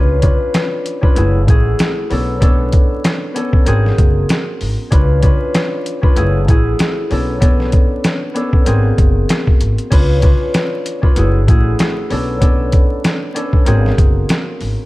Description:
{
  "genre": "hip hop, boom-bap hip-hop",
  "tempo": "96 BPM",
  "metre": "4/4",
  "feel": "swing 57% on 16ths",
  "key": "unclear",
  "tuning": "A4 = 441 Hz",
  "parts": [
    { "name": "concert harp", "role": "accompaniment", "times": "0.0-14.9 s", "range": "A3 to B4", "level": "-19 LUFS", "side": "left 1 dB", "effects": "cassette tape, high-pass filter, low-pass filter" },
    { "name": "upright bass", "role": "bass", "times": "0.0-14.7 s", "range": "F#1 to C#2", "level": "-16 LUFS", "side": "equal", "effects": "none" },
    { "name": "boom bap sampler-style drum kit", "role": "drums", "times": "0.2-14.8 s", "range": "crash cymbal, hi-hat, kick drum, snare drum", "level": "-13 LUFS", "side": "equal", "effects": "none" }
  ],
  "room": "small room ambience",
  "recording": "dark, warm production, vinyl crackle",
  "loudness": "-12 LUFS",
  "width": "side -19 dB against mid",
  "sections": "0.0-9.9 A section; 9.9-14.9 A section",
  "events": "none",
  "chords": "0.0 C#7b9; 1.2 F#m9; 2.1 Bm9; 3.7 G#9; 4.9 C#7b9; 6.2 F#m9; 7.1 Bm9; 8.7 G#9; 9.9 C#7b9; 11.2 F#m9; 12.1 Bm9; 13.7 G#9"
}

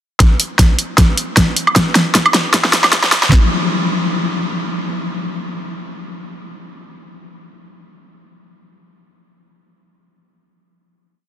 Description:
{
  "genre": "future bass",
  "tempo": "154 BPM",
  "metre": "4/4",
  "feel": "swing 55% on 16ths, half-time",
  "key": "none",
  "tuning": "none",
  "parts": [
    { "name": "big-room dance drum kit", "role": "drums", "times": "0.2-3.3 s", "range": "hi-hat, snare drum, woodblock", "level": "-14 LUFS", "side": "equal", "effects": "overdrive" },
    { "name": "trap drum kit", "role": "drums", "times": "0.2-3.4 s", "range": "handclaps, kick drum, snare drum", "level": "-12 LUFS", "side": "equal", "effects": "none" }
  ],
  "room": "wet huge ambient reverb, RT60 7.5 s",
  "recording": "dense, heavily limited modern master, high-pass filter",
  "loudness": "-12 LUFS",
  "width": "side -11 dB against mid",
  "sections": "0.2-3.3 build; 3.3-4.9 final hit",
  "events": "build-up 0.2-3.3; drum fill 0.2-3.3; filter sweep 0.2-3.3",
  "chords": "none"
}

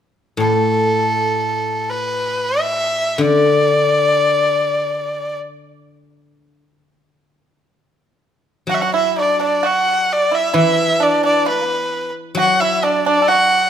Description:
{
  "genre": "chinese traditional, Chinese chamber ensemble",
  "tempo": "free time",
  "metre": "none",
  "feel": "none",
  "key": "D gong mode",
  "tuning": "A4 = 440 Hz",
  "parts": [
    { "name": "rich erhu", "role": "melody", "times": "0.4-13.7 s", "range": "A4 to F#5", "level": "-16 LUFS", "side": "equal", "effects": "none" },
    { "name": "guzheng", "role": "accompaniment", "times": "0.4-13.7 s", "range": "A2 to F#3", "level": "-21 LUFS", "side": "left 2 dB", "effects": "none" },
    { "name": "pipa", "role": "second line", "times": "8.7-13.7 s", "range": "B3 to A4", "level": "-20 LUFS", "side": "right 6 dB", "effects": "none" }
  ],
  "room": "moderate recital hall reverb, RT60 1.4 s",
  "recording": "minimal, uncompressed stereo recording",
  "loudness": "-14 LUFS",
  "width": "side -9 dB against mid",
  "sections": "0.0-8.7 A section; 8.7-13.7 B section",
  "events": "none",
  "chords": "none"
}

